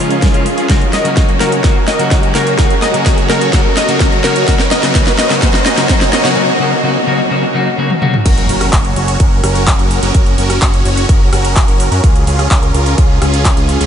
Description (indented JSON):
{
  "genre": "EDM, festival progressive house",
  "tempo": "127 BPM",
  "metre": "4/4",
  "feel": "straight",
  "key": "F# major",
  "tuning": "A4 = 441 Hz",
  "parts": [
    { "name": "clean electric guitar", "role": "accompaniment", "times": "0.0-8.2 s", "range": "C#3 to F#4", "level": "-18 LUFS", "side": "left 3 dB", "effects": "vintage 12-bit sampler grit, sidechain pumping, analog delay" },
    { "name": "supersaw chords", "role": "riff", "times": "0.0-13.9 s", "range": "C#4 to C#5", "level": "-17 LUFS", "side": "right 1 dB", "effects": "phaser, sidechain pumping, low-pass filter, analog delay" },
    { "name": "riser and impact", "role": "sound effects", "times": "0.4-10.1 s", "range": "none", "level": "-23 LUFS", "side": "right 1 dB", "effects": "none" },
    { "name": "big-room dance drum kit", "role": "drums", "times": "0.1-13.9 s", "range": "crash cymbal, handclaps, hi-hat, rim click, snare drum, toms", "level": "-17 LUFS", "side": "equal", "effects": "none" },
    { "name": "electronic kick drum", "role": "drums", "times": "0.2-13.5 s", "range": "none", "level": "-12 LUFS", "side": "equal", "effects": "none" },
    { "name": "glassy wavetable pluck", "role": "melody", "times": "0.9-6.3 s", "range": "A#4 to D#5", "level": "-19 LUFS", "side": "equal", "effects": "chorus, cassette tape, analog delay" },
    { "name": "fat analog bass", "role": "bass", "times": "8.3-13.9 s", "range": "F#1 to F#2", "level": "-15 LUFS", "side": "equal", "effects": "sidechain pumping" }
  ],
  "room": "wet huge ambient reverb, RT60 7.6 s",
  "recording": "dreamy mix soaked in reverb, nothing above 10.8 kHz",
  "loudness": "-9 LUFS",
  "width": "side -8 dB against mid",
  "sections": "0.0-8.3 A section; 8.3-13.9 B section",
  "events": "build-up 0.0-8.3; drum fill 0.0-6.4, 7.9-8.3; riser 0.4-6.4; break 6.4-8.3; drop 8.3-13.9; impact 8.3-10.1",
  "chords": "0.0 C#; 0.7 F#/C#; 8.3 F#; 12.0 C#"
}